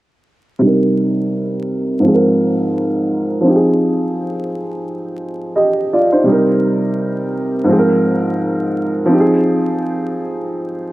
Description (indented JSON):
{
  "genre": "hip hop",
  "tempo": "85 BPM",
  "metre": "4/4",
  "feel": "swing 63% on 16ths",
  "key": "F minor",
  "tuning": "A4 = 441 Hz",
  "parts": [
    { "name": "dark upright piano", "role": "accompaniment", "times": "0.6-10.9 s", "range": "Ab2 to Eb5", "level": "-14 LUFS", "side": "right 1 dB", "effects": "cassette tape, high-pass filter, low-pass filter" }
  ],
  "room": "light reverb, small room ambience",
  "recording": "dark, warm production, vinyl crackle",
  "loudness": "-14 LUFS",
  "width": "side -17 dB against mid",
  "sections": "0.6-10.9 A section",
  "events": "filter sweep on upright piano 0.6-10.9",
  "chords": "0.6 Cm7; 2.0 Ab69; 3.4 Fm7; 6.3 Cm7; 7.7 Ab69; 9.1 Fm7"
}